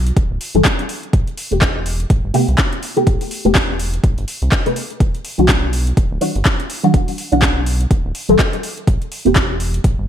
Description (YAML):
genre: deep house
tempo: 124 BPM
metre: 4/4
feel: swing 58% on 16ths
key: unclear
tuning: A4 = 440 Hz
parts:
  - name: rubbery square bass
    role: bass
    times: 0.0-10.1 s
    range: D1 to C2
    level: -19 LUFS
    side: equal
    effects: sidechain pumping
  - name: deep house drum kit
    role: drums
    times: 0.1-10.0 s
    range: handclaps, hi-hat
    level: -21 LUFS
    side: equal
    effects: overdrive
  - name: electronic kick drum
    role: drums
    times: 0.2-10.0 s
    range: none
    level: -16 LUFS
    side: equal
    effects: overdrive
  - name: filtered dub chord stab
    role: stabs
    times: 0.5-10.1 s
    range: C3 to B4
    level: -17 LUFS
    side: left 1 dB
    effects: phaser, ensemble chorus, sidechain pumping, ping-pong delay
room: light reverb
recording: bright 1980s-style digital production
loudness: -14 LUFS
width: side -9 dB against mid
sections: 0.0-10.1 A section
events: filter sweep on synth stab 0.0-10.1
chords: 0.0 Em7; 0.9 Am9; 5.0 Em9; 8.6 Am9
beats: 0.17 0.65 | 1.13 1.62 2.10 2.58 | 3.07 3.55 4.04 4.52 | 5.00 5.49 5.97 6.46 | 6.94 7.42 7.91 8.39 | 8.88 9.36 9.84